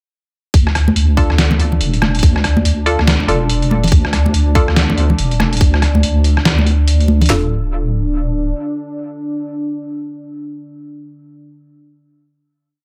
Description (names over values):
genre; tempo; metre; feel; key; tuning
deep dubstep; 142 BPM; 4/4; swing 61% on 16ths, half-time; D minor; A4 = 440 Hz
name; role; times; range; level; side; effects
dark analog pad; sustained chords; 0.9-11.5 s; D4; -27 LUFS; equal; chorus
deep soft wobble bass; bass; 0.5-8.5 s; D1 to D2; -16 LUFS; equal; chorus
garage drum kit; drums; 0.5-7.4 s; handclaps, kick drum, snare drum, toms; -15 LUFS; equal; overdrive
trip hop sampler-style drum kit; drums; 0.5-7.3 s; hi-hat, rim click, snare drum; -21 LUFS; equal; none
congas; percussion; 0.9-7.3 s; none; -22 LUFS; equal; none
filtered dub chord stab; stabs; 1.2-11.7 s; D4 to A4; -24 LUFS; equal; chorus, dub echo
room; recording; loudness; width
little or no reverb; none; -15 LUFS; mono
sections
0.5-7.3 drop; 7.3-10.7 final chord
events
drop 0.5-7.3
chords
0.5 Dm